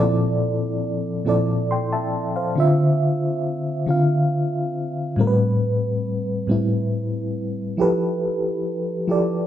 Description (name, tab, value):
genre	R&B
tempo	46 BPM (dotted quarters)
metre	6/8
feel	straight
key	A phrygian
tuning	A4 = 439 Hz
part	FM electric piano with tremolo	solo	0.0-9.5 s	A2 to C6	-19 LUFS	equal	none
room	moderate large studio reverb, RT60 1.1 s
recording	band playing live in one room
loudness	-19 LUFS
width	side -11 dB against mid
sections	0.0-9.5 A section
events	FM electric piano fill 9.1-9.5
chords	0.0 Bbmaj9#11; 2.6 Dm9; 5.2 Am9; 7.8 Fmaj9#11